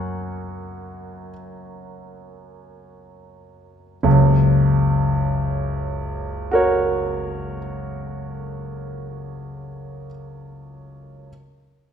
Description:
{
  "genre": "classical, romantic nocturne for solo piano",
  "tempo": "21-24 BPM (dotted quarters)",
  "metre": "6/8",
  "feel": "rubato",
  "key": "F# major",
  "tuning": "A4 = 439 Hz",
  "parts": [
    { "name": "bright concert grand piano", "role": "solo", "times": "0.0-11.3 s", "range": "F#1 to F#6", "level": "-20 LUFS", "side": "equal", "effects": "none" }
  ],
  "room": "wet recital hall reverb, RT60 1.6 s",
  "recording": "none",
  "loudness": "-19 LUFS",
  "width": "side -8 dB against mid",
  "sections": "0.0-4.0 A section; 4.0-9.0 B section",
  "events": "slowing down 0.0-4.0",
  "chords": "0.0 F#"
}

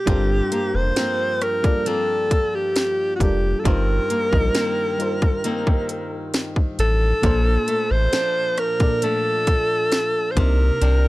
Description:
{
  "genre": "contemporary R&B",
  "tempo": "67 BPM",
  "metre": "4/4",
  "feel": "straight",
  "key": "Bb major",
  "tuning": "A4 = 440 Hz",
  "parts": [
    { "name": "warm alto saxophone", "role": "melody", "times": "0.0-11.1 s", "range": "Gb4 to C5", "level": "-21 LUFS", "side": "equal", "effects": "none" },
    { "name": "FM electric piano with auto-pan", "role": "accompaniment", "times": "0.0-11.1 s", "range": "Bb2 to Eb5", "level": "-29 LUFS", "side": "equal", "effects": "none" },
    { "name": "flamenco guitar", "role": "arpeggios", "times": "0.1-11.1 s", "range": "G2 to D4", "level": "-29 LUFS", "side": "left 2 dB", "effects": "none" },
    { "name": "round analog bass", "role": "bass", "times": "0.1-11.1 s", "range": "F1 to C2", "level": "-19 LUFS", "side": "equal", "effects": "none" },
    { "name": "trap drum kit", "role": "drums", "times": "0.1-11.0 s", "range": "hi-hat, kick drum, rim click, snare drum", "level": "-20 LUFS", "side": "equal", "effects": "none" }
  ],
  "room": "little or no reverb",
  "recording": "dry, gritty hardware recording, cassette tape",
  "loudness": "-18 LUFS",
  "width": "side -18 dB against mid",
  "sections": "0.0-11.1 A section",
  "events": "none",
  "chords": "0.1 Gm11; 3.7 Eb6/G; 7.2 Bbmaj7; 10.4 Cm9"
}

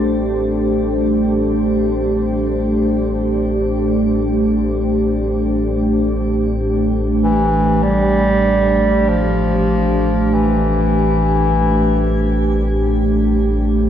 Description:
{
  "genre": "dark ambient drone",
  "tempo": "free time",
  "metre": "none",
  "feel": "none",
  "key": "A minor",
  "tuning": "A4 = 439 Hz",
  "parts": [
    { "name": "dark analog pad", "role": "sustained chords", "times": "0.0-13.9 s", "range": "A3 to C5", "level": "-17 LUFS", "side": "equal", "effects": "chorus, shimmer reverb" },
    { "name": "deep rumbling drone", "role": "drone", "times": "0.0-13.9 s", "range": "A1", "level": "-21 LUFS", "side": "equal", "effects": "built-in reverb, wide subtle chorus" },
    { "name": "bronze singing bowl", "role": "texture", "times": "0.0-13.9 s", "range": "A4", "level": "-37 LUFS", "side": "left 1 dB", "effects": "none" },
    { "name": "warm bass clarinet", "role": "melody", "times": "7.2-12.9 s", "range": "E3 to G3", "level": "-17 LUFS", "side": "equal", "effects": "shimmer reverb, analog delay" }
  ],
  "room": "wet echo chamber reverb, RT60 2.3 s",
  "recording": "echo-heavy mix",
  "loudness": "-14 LUFS",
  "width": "side -9 dB against mid",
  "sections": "0.0-13.9 A section",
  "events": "fade-in on synth drone 0.0-13.9",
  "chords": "0.0 Am"
}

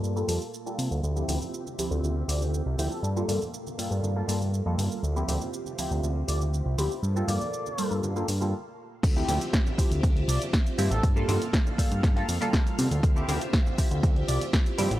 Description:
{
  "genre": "filtered disco house",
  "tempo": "120 BPM",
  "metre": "4/4",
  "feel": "straight",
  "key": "D minor",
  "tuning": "A4 = 438 Hz",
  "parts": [
    { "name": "funky polysynth comp", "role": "accompaniment", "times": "0.0-14.9 s", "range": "F3 to A4", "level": "-32 LUFS", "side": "equal", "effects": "chorus, phaser, sidechain pumping, low-pass filter" },
    { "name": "string machine, full ensemble", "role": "sustained chords", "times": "0.0-15.0 s", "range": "Bb3 to F5", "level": "-36 LUFS", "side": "right 1 dB", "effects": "phaser, ensemble chorus, sidechain pumping, low-pass filter" },
    { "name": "fat analog bass", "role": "bass", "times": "0.0-15.0 s", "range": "A1 to C3", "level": "-27 LUFS", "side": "equal", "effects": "tube saturation, sidechain pumping, low-pass filter" },
    { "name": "punchy analog drum machine", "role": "drums", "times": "0.0-15.0 s", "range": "crash cymbal, hi-hat, shaker, snare drum", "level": "-33 LUFS", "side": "equal", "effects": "overdrive, sidechain pumping on perc, sidechain pumping on hats, sidechain pumping on cymbals" },
    { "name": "maracas and congas", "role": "percussion", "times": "1.0-15.0 s", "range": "none", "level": "-40 LUFS", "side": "right 2 dB", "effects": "none" },
    { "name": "muted trumpet section", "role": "melody", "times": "2.3-3.1, 6.3-11.1, 14.3-14.4 s", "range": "A4 to D5", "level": "-37 LUFS", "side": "equal", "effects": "sidechain pumping, low-pass filter, analog delay" },
    { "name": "electronic kick drum", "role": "drums", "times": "9.0-14.6 s", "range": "none", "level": "-24 LUFS", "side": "equal", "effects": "overdrive" }
  ],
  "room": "digital ambience",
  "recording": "dry, gritty hardware recording",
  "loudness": "-24 LUFS",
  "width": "side -15 dB against mid",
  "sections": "0.0-9.0 A section; 9.0-15.0 B section",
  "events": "filter sweep 0.0-9.0; stop 8.5-9.0; drop 9.0-15.0",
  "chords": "0.0 Gm9; 1.0 Dm11; 3.0 Gm9; 5.0 Dm11; 7.0 Gm9; 9.0 Dm11; 11.0 Gm9; 13.0 Dm11"
}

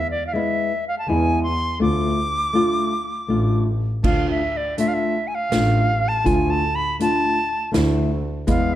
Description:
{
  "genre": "klezmer",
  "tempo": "81 BPM",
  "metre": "3/4",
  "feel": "straight",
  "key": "D dorian sharp4",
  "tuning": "A4 = 439 Hz",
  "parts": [
    { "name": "bright reedy silver concert flute", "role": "melody", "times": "0.0-8.8 s", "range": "D5 to D6", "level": "-23 LUFS", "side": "equal", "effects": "none" },
    { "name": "nylon-string guitar", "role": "accompaniment", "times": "0.3-8.8 s", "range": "G#3 to F4", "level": "-23 LUFS", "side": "left 1 dB", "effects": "none" },
    { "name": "rich double bass", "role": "bass", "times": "1.1-8.7 s", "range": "A1 to E2", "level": "-24 LUFS", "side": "equal", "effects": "none" },
    { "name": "street-band drum kit", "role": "drums", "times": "4.0-8.6 s", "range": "crash cymbal, hi-hat, kick drum, snare drum", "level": "-25 LUFS", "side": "right 2 dB", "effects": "none" }
  ],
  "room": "moderate recital hall reverb, RT60 1.5 s",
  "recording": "dark, warm production",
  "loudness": "-18 LUFS",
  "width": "side -12 dB against mid",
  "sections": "0.0-4.0 A section; 4.0-8.8 A section",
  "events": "none",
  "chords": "0.0 E; 1.8 Dm"
}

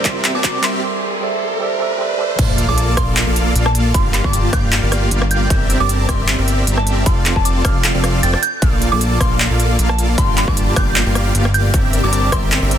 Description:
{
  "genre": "future bass",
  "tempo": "154 BPM",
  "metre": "4/4",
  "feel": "swing 53% on 16ths, half-time",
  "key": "unclear",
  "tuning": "A4 = 440 Hz",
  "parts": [
    { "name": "soft round pluck", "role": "accompaniment", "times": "0.0-2.4 s", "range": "G3 to E5", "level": "-22 LUFS", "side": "right 5 dB", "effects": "chorus, sidechain pumping, digital delay" },
    { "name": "warm chamber string section", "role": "sustained chords", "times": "0.0-0.8 s", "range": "G2 to C4", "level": "-39 LUFS", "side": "left 3 dB", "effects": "none" },
    { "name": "dense compressed supersaw", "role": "riff", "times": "0.0-12.8 s", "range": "Bb3 to A5", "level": "-20 LUFS", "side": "equal", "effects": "sidechain pumping, digital delay" },
    { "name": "trap drum kit", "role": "drums", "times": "0.0-12.8 s", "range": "crash cymbal, handclaps, hi-hat, rim click", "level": "-21 LUFS", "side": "equal", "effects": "none" },
    { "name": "riser and sub drop", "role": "sound effects", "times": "0.0-3.9 s", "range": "none", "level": "-24 LUFS", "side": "right 1 dB", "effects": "none" },
    { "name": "electronic kick drum", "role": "drums", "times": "0.1-12.4 s", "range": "none", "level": "-18 LUFS", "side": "equal", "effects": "overdrive" },
    { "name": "soft synth bell", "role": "melody", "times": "0.3-12.4 s", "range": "A5 to A6", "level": "-23 LUFS", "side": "right 1 dB", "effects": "chorus, phaser, sidechain pumping, digital delay" },
    { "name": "fat analog bass", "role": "bass", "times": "2.4-12.8 s", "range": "F1 to Bb1", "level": "-18 LUFS", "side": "equal", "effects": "sidechain pumping" }
  ],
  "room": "little or no reverb",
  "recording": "dense, heavily limited modern master, high-pass filter",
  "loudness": "-13 LUFS",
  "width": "side -10 dB against mid",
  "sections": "0.0-2.4 A section; 2.4-12.8 B section",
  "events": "build-up 0.0-2.4; drum fill 0.0-0.8; riser 0.0-2.4; filter sweep 0.0-2.4; break 0.8-2.4; drop 2.4-12.8; impact 2.4-3.9",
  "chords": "0.0 C9/G; 0.8 C69/G; 2.4 Bbmaj7; 3.9 Gm7; 5.5 C9/G; 7.1 F6; 8.6 Bbmaj7; 10.2 Gm7; 11.7 C9/G"
}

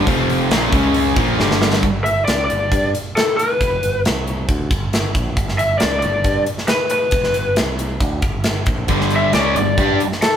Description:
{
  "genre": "hard rock",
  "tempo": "136 BPM",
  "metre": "4/4",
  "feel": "straight",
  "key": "unclear",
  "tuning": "A4 = 439 Hz",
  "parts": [
    { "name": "analog string pad", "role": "sustained chords", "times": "0.0-1.8 s", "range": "G3 to A4", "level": "-32 LUFS", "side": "equal", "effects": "none" },
    { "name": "heavy high-gain guitar", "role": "riff", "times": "0.0-1.8, 8.9-10.0 s", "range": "F2 to G4", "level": "-20 LUFS", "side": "right 7 dB", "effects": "distortion" },
    { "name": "sludgy distorted guitar", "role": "riff", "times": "0.0-1.8, 8.9-10.0 s", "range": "F2 to G4", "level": "-19 LUFS", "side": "left 8 dB", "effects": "overdrive" },
    { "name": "modern bright fingered electric bass", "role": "bass", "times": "0.0-10.0 s", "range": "F1 to G2", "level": "-23 LUFS", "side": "equal", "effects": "none" },
    { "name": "tight metal drum kit", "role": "drums", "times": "0.1-10.3 s", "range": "hi-hat, kick drum, snare drum", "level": "-20 LUFS", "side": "equal", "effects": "none" },
    { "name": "lead guitar through a small cranked amp", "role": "melody", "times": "2.0-10.4 s", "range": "A4 to E5", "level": "-18 LUFS", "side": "left 1 dB", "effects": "overdrive" }
  ],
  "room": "moderate large studio reverb, RT60 0.8 s",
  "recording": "band playing live in one room",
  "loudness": "-15 LUFS",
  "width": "side -9 dB against mid",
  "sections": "0.0-1.8 A section; 1.8-10.4 B section",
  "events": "drum fill 1.4-1.8",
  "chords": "0.1 F5; 0.5 G5; 0.7 C#5; 1.2 G5; 1.8 G; 4.0 N.C.; 4.5 G; 7.6 N.C.; 8.0 G5"
}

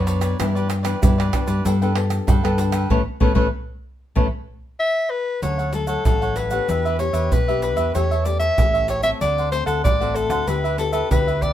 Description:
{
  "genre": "samba and choro",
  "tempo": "95 BPM",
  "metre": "4/4",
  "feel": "straight",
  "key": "D major",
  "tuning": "A4 = 437 Hz",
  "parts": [
    { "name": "cavaquinho", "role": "accompaniment", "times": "0.0-11.5 s", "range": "D4 to G5", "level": "-27 LUFS", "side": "right 4 dB", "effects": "none" },
    { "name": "nylon-string guitar", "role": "accompaniment", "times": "0.0-11.5 s", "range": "G2 to A4", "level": "-26 LUFS", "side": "left 6 dB", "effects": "none" },
    { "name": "hollow-body short-scale fingered electric bass", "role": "bass", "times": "0.0-11.5 s", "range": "A1 to G2", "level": "-23 LUFS", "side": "equal", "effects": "none" },
    { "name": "tube shaker, pandeiro, tamborim and surdo", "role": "percussion", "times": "0.1-11.5 s", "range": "none", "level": "-22 LUFS", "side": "right 1 dB", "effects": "none" },
    { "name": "warm soprano saxophone", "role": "melody", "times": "4.8-11.5 s", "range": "A4 to E5", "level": "-22 LUFS", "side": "left 2 dB", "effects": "none" }
  ],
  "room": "moderate studio reverb, RT60 0.7 s",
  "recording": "minimal, uncompressed stereo recording",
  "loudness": "-18 LUFS",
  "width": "side -11 dB against mid",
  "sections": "0.0-5.4 A section; 5.4-11.5 B section",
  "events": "band accent 2.9-5.4",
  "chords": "0.4 Em7/G; 1.7 Gadd9; 2.9 Aadd9; 5.4 Dmaj7; 6.7 Em7; 8.0 A7/E; 9.2 D7; 10.5 G6/D"
}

